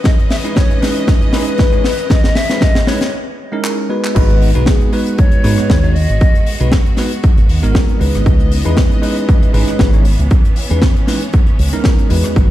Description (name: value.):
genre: nu-disco, nu disco.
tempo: 117 BPM.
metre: 4/4.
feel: swing 55% on 16ths.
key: unclear.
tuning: A4 = 440 Hz.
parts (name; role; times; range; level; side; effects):
hollow concert flute; melody; 0.0-6.7 s; G#4 to E5; -22 LUFS; left 3 dB; low-pass filter, dub echo.
clear studio string section; sustained chords; 0.0-12.5 s; E3 to D#5; -26 LUFS; right 1 dB; sidechain pumping.
tight funk drum kit; drums; 0.0-12.5 s; crash cymbal, handclaps, hi-hat, rim click, snare drum; -20 LUFS; left 2 dB; none.
electronic kick drum; drums; 0.1-12.5 s; none; -12 LUFS; equal; overdrive.
bell-like tine electric piano; accompaniment; 0.4-12.5 s; G#3 to C#5; -19 LUFS; equal; phaser, sidechain pumping, low-pass filter, dub echo.
fingered electric bass with an envelope filter; bass; 4.2-12.5 s; G#1 to G#2; -13 LUFS; equal; tube saturation.
room: small room ambience.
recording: played on a big sound system in a bare room, stone room reverb.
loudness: -11 LUFS.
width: side -14 dB against mid.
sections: 0.0-4.2 A section; 4.2-12.5 B section.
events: build-up 0.0-4.2; drum fill 0.0-3.1, 3.6-4.2; filter sweep on tine electric piano 0.0-4.2; break 3.1-4.2; drop 4.2-12.5.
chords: 0.0 C#m9; 4.2 G#m7; 8.0 C#m9.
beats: | 0.06 0.57 1.08 1.59 | 2.11 2.62 3.13 3.65 | 4.16 4.67 5.18 5.70 | 6.21 6.72 7.24 7.75 | 8.26 8.77 9.29 9.80 | 10.31 10.82 11.34 11.85 | 12.36.